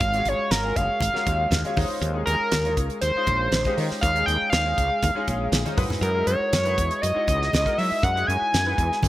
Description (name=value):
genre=electric jazz fusion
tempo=120 BPM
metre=4/4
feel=straight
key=unclear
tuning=A4 = 440 Hz
part: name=overdriven synth lead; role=melody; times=0.0-9.0 s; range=A#4 to G#5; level=-23 LUFS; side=equal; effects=digital delay
part: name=clear concert grand piano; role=accompaniment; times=0.0-9.1 s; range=G#3 to G#5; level=-30 LUFS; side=left 2 dB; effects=analog chorus
part: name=woody fretless electric bass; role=bass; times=0.0-9.1 s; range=F#1 to F#3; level=-26 LUFS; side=equal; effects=none
part: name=damped 70s drum kit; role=drums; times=0.0-9.1 s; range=hi-hat, kick drum, snare drum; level=-26 LUFS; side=right 1 dB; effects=none
part: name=congas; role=percussion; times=0.0-9.1 s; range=none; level=-31 LUFS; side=left 1 dB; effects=none
room=moderate plate reverb, RT60 1.2 s, studio reverb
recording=bright 1980s-style digital production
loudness=-20 LUFS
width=side -15 dB against mid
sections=0.0-9.1 A section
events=grand piano fill 5.0-6.0; drum fill 5.5-6.0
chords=0.0 G#13sus4; 1.8 D#13sus4; 5.8 F#13sus4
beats=| 0.02 0.52 1.02 1.52 | 2.02 2.52 3.02 3.52 | 4.03 4.53 5.03 5.53 | 6.03 6.53 7.03 7.53 | 8.03 8.53 9.03